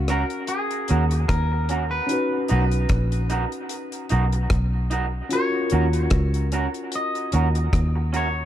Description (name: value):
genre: lovers rock reggae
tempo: 75 BPM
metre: 4/4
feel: swing 56% on 16ths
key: Eb minor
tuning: A4 = 440 Hz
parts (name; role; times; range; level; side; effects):
- tine electric piano; accompaniment; 0.0-8.5 s; Db4 to F5; -29 LUFS; left 2 dB; dub echo
- vintage muted fingered electric bass; bass; 0.0-8.4 s; A#1 to Eb2; -22 LUFS; equal; none
- twangy electric guitar; melody; 0.1-8.5 s; Ab4 to Eb5; -29 LUFS; left 1 dB; tape echo
- electric guitar through a small old amp; stabs; 0.1-8.3 s; Db4 to Bb4; -29 LUFS; right 5 dB; dub echo
- deep reggae drum kit; drums; 0.1-8.3 s; hi-hat, kick drum, rim click; -25 LUFS; equal; none
room: small room ambience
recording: dark, warm production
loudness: -20 LUFS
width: side -11 dB against mid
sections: 0.0-8.5 A section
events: none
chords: 0.0 Ebm7; 2.1 Bmaj7; 5.3 Ebm7